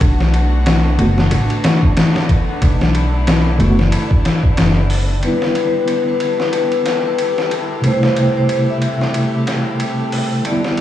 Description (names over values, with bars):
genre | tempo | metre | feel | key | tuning
trip hop | 92 BPM | 4/4 | swing 57% on 16ths | E minor | A4 = 441 Hz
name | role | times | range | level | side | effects
rich studio string section | sustained chords | 0.0-10.8 s | C3 to G4 | -24 LUFS | equal | vintage 12-bit sampler grit
upright bass | bass | 0.0-5.2 s | F#1 to B1 | -15 LUFS | equal | tube saturation
trip hop sampler-style drum kit | drums | 0.0-10.8 s | hi-hat, kick drum, ride cymbal, snare drum | -18 LUFS | equal | high-pass filter on kick, high-pass filter on cymbals, high-pass filter on snare, high-pass filter on hats, high-pass filter on room
wind-like tuned noise texture | texture | 0.0-10.8 s | D4 to A4 | -28 LUFS | right 1 dB | built-in reverb
mellow tine electric piano | accompaniment | 1.0-10.8 s | C3 to F#4 | -19 LUFS | equal | tremolo, tape echo
vibraphone with medium hard mallets | melody | 5.2-10.8 s | B4 to E5 | -19 LUFS | left 4 dB | tape echo
room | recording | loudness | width
little or no reverb | dry, gritty hardware recording, cassette tape, studio reverb | -13 LUFS | side -12 dB against mid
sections
0.0-5.2 A section; 5.2-10.8 B section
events
none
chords
0.0 Bm7; 5.2 Em7; 7.8 Am7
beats
| 0.01 0.66 1.32 1.97 | 2.62 3.27 3.92 4.58 | 5.23 5.88 6.53 7.18 | 7.84 8.49 9.14 9.79 | 10.45